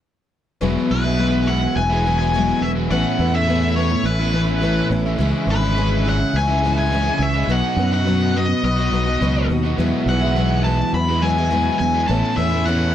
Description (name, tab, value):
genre	rock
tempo	105 BPM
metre	4/4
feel	straight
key	E major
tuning	A4 = 441 Hz
part	picked twelve-string acoustic guitar	accompaniment	0.6-12.9 s	E2 to F#4	-23 LUFS	left 4 dB	none
part	bright tonewheel organ	sustained chords	0.6-12.9 s	F#4 to C#6	-33 LUFS	right 1 dB	chorus vibrato, slow rotary speaker
part	crunchy overdriven guitar	riff	0.6-12.9 s	E2 to F#4	-24 LUFS	right 2 dB	none
part	fingered electric bass	bass	0.6-12.9 s	E1 to F#2	-20 LUFS	right 1 dB	none
part	nasal lead guitar with a parked wah	melody	0.9-12.9 s	B4 to B5	-23 LUFS	left 2 dB	overdrive, tape echo
room	light reverb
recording	dry, close 1970s-style studio recording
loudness	-16 LUFS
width	side -10 dB against mid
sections	0.6-12.9 A section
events	stop 0.0-0.6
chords	0.0 N.C.; 0.6 Eadd9; 2.9 Aadd9; 5.2 C#m; 7.5 B; 9.8 Eadd9; 12.1 Aadd9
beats	0.05 | 0.62 1.20 1.77 2.34 | 2.91 3.48 4.06 4.63 | 5.20 5.77 6.34 6.92 | 7.49 8.06 8.64 9.21 | 9.79 10.36 10.93 11.51 | 12.08 12.66